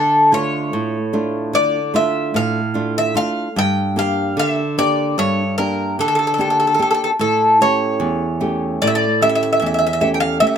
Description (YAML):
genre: greek folk, Greek bouzouki band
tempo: 149 BPM (eighths)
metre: 9/8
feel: straight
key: D harmonic minor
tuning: A4 = 439 Hz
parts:
  - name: Greek bouzouki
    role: melody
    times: 0.0-10.6 s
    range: A4 to G5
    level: -17 LUFS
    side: equal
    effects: none
  - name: flamenco guitar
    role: accompaniment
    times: 0.0-10.6 s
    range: E2 to G4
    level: -20 LUFS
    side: right 1 dB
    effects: none
room: moderate studio reverb, RT60 0.5 s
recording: close, detailed microphones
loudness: -15 LUFS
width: side -8 dB against mid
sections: 0.0-10.6 A section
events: none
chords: 0.0 Dm; 3.6 Gm; 7.2 A7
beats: 0.33 0.73 1.14 1.54 1.94 2.35 2.75 3.16 | 3.56 3.96 4.37 4.77 5.17 5.58 5.98 6.38 6.79 | 7.19 7.59 7.99 8.40 8.80 9.20 9.61 10.01 10.41